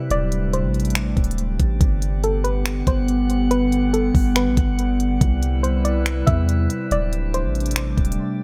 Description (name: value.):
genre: hip hop, atmospheric cloud-rap.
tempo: 141 BPM.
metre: 4/4.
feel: half-time.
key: G major.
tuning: A4 = 441 Hz.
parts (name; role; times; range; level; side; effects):
warbly tape-like pad; sustained chords; 0.0-8.4 s; C3 to F#5; -26 LUFS; equal; chorus, built-in reverb, sidechain pumping.
drifting glass-harmonics texture; texture; 0.0-8.4 s; B3 to F#5; -38 LUFS; equal; chorus, built-in reverb.
soft round pluck; melody; 0.1-7.7 s; A4 to E5; -29 LUFS; equal; chorus, low-pass filter, tape echo.
long sustained 808-style bass; bass; 0.1-8.2 s; D1 to E2; -24 LUFS; equal; none.
trap drum kit; drums; 0.1-8.2 s; finger snaps, hi-hat, kick drum; -24 LUFS; equal; none.
room: little or no reverb.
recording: none.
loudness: -20 LUFS.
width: mono.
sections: 0.0-8.4 A section.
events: break 8.2.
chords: 0.1 D7sus4; 1.8 Gmaj7; 5.2 Cmaj7; 6.9 D7sus4.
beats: | 0.10 0.53 0.96 1.38 | 1.81 2.23 2.66 3.08 | 3.51 3.94 4.36 4.79 | 5.21 5.64 6.06 6.49 | 6.91 7.34 7.76 8.19.